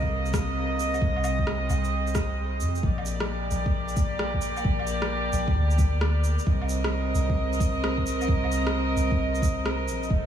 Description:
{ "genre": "future garage", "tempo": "132 BPM", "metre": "4/4", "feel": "swing 65% on 16ths", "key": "C minor", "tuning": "A4 = 444 Hz", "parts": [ { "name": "rich chamber string section", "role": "sustained chords", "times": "0.0-10.3 s", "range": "C3 to Eb5", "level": "-28 LUFS", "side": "right 1 dB", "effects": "sidechain pumping" }, { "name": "soft 808-style bass", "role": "bass", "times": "0.0-10.3 s", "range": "F1 to F2", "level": "-27 LUFS", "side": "equal", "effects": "sidechain pumping" }, { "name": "electronic kick drum", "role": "drums", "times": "0.0-10.2 s", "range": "none", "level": "-26 LUFS", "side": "equal", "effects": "none" }, { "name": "electronic shaker, rim click and woodblock", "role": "drums", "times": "0.3-10.1 s", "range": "none", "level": "-34 LUFS", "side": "equal", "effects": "none" } ], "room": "moderate cathedral reverb, RT60 5.1 s", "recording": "dreamy mix soaked in reverb, studio ambience", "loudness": "-23 LUFS", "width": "side -9 dB against mid", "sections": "0.0-2.8 A section; 2.8-10.3 A section", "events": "none", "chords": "0.0 Cm7; 2.8 Bb6; 6.5 Cm7", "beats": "0.11 0.56 | 1.02 1.47 1.93 2.38 | 2.83 3.29 3.74 4.20 | 4.65 5.11 5.56 6.02 | 6.47 6.92 7.38 7.83 | 8.29 8.74 9.20 9.65 | 10.11" }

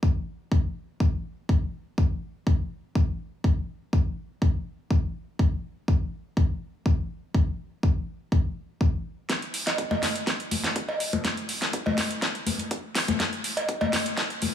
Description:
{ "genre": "house", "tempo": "123 BPM", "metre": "4/4", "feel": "straight", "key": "none", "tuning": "none", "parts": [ { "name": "electronic kick drum", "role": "drums", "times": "0.0-14.3 s", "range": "none", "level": "-23 LUFS", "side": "left 1 dB", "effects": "high-pass filter on kick" }, { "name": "pop drum kit", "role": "drums", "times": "9.3-14.5 s", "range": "hi-hat, snare drum", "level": "-27 LUFS", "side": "equal", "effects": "high-pass filter on snare, high-pass filter on hats" }, { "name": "cowbell and congas", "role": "percussion", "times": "9.7-14.5 s", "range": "none", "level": "-28 LUFS", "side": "left 2 dB", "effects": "sidechain pumping on perc" } ], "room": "little or no reverb", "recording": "small room ambience", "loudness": "-25 LUFS", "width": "side -10 dB against mid", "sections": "0.0-9.3 A section; 9.3-14.5 B section", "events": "build-up 9.3-14.5; drum fill 9.3-14.5", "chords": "none", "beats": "0.03 0.52 1.00 | 1.49 1.98 2.47 2.95 | 3.44 3.93 4.42 4.91 | 5.39 5.88 6.37 6.86 | 7.34 7.83 8.32 8.81 | 9.30 9.78 10.27 10.76 | 11.25 11.73 12.22 12.71 | 13.20 13.69 14.17" }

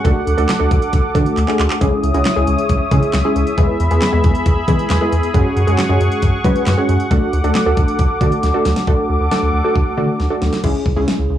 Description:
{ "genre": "synth-pop", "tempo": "136 BPM", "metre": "4/4", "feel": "straight", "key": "unclear", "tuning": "A4 = 442 Hz", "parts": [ { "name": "funky polysynth comp", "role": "accompaniment", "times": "0.0-11.4 s", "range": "G#3 to B4", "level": "-18 LUFS", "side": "equal", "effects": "chorus" }, { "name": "sweeping resonant pad", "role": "sustained chords", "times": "0.0-10.6 s", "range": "G#4 to D#6", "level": "-21 LUFS", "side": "equal", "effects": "chorus" }, { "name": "rubbery square bass", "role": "bass", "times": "0.0-11.4 s", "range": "C#2 to F#3", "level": "-17 LUFS", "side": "equal", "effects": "none" }, { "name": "pop drum kit", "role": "drums", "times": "0.0-11.2 s", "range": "crash cymbal, handclaps, hi-hat, kick drum, snare drum", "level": "-18 LUFS", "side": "equal", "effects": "none" } ], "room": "little or no reverb", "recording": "dry, gritty hardware recording, transformer saturation, cassette tape", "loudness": "-13 LUFS", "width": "side -11 dB against mid", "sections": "0.0-8.9 A section; 8.9-10.6 B section", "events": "drum fill 1.4-1.8, 8.4-8.9, 10.2-10.6", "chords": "0.1 D; 1.8 C#madd9; 3.6 E; 5.3 F#sus2; 7.1 D; 10.6 C#m", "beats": "| 0.05 0.49 0.93 1.37 | 1.81 2.26 2.70 3.14 | 3.58 4.02 4.46 4.90 | 5.34 5.79 6.23 6.67 | 7.11 7.55 7.99 8.43 | 8.87 9.31 9.76 10.20 | 10.64 11.08" }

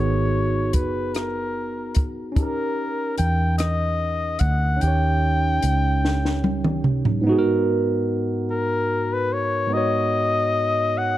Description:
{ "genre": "slow six-eight R&B", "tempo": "49 BPM (dotted quarters)", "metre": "6/8", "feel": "straight", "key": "G# minor", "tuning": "A4 = 442 Hz", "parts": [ { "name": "warm flugelhorn", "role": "melody", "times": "0.0-11.2 s", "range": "A#4 to G5", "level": "-24 LUFS", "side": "left 2 dB", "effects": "slapback echo" }, { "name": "barky tine electric piano", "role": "accompaniment", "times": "0.0-11.2 s", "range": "G#2 to C#5", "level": "-24 LUFS", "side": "right 2 dB", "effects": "phaser" }, { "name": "vintage muted fingered electric bass", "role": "bass", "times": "0.0-7.2 s", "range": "F#1 to E2", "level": "-22 LUFS", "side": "equal", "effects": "none" }, { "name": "compact cocktail drum kit", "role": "drums", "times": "0.7-7.2 s", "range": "hi-hat, kick drum, rim click, snare drum, toms", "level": "-22 LUFS", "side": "equal", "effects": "none" } ], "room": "light reverb, small room ambience", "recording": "dark, warm production", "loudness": "-20 LUFS", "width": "side -14 dB against mid", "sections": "0.0-7.3 A section; 7.3-11.2 B section", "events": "drum fill 6.0-7.3", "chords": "0.0 G#m9; 2.4 D#7; 7.3 G#m9", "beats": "1.14 | 2.36 3.59 | 4.81 6.04 | 7.26 8.48 | 9.71 10.93" }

